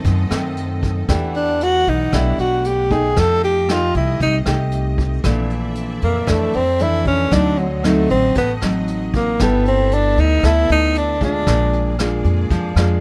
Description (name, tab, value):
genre	bossa nova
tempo	116 BPM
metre	4/4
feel	straight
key	unclear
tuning	A4 = 441 Hz
part	nylon-string guitar	accompaniment	0.0-13.0 s	F2 to A4	-24 LUFS	equal	none
part	clear studio string section	sustained chords	0.0-13.0 s	A3 to F#5	-36 LUFS	equal	none
part	upright bass	bass	0.0-13.0 s	G1 to F#2	-22 LUFS	equal	none
part	vintage brush drum kit	drums	0.0-12.9 s	hi-hat, kick drum, rim click	-27 LUFS	equal	none
part	breathy tenor saxophone	melody	1.4-12.0 s	F#3 to A4	-20 LUFS	equal	none
room	light reverb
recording	close, detailed microphones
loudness	-17 LUFS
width	mono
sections	0.0-13.0 A section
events	tenor saxophone solo 0.0-13.0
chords	0.0 B7b9 (rootless); 1.1 Em11; 3.2 F9; 5.2 Bbmaj9#11; 7.3 D7b9; 9.4 G69; 11.5 Bb7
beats	0.05 0.57 | 1.09 1.61 2.13 2.65 | 3.17 3.69 4.20 4.72 | 5.24 5.76 6.28 6.80 | 7.32 7.84 8.36 8.87 | 9.39 9.91 10.43 10.95 | 11.46 11.98 12.50